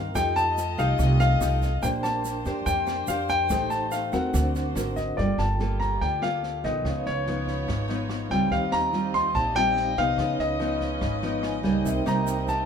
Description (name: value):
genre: bossa nova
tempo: 144 BPM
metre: 4/4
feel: straight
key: G minor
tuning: A4 = 440 Hz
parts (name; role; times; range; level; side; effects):
- warm concert grand piano; melody; 0.0-12.7 s; C#5 to C6; -26 LUFS; left 2 dB; none
- nylon-string guitar; accompaniment; 0.0-12.7 s; G#2 to C5; -30 LUFS; equal; none
- vibraphone with soft mallets; accompaniment; 0.0-12.7 s; C4 to Bb5; -34 LUFS; right 2 dB; none
- warm chamber string section; sustained chords; 0.0-12.7 s; A3 to Eb5; -36 LUFS; left 3 dB; none
- upright bass; bass; 0.0-12.6 s; G1 to G2; -29 LUFS; right 1 dB; none
- open jazz drum kit; drums; 0.2-12.5 s; kick drum, rim click, snare drum; -35 LUFS; right 1 dB; none
- tube shaker; percussion; 0.2-5.2, 11.9-12.7 s; none; -41 LUFS; right 7 dB; none
room: light reverb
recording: minimal, uncompressed stereo recording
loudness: -23 LUFS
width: side -7 dB against mid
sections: 0.0-5.2 A section; 5.2-12.7 B section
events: vibraphone fill 11.2-11.9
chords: 0.2 F9; 1.8 Bb69; 3.5 Am7b5; 4.3 Daug7; 5.2 Gm9; 6.8 C#9; 8.5 Eb69; 10.2 C#9; 11.9 Cm7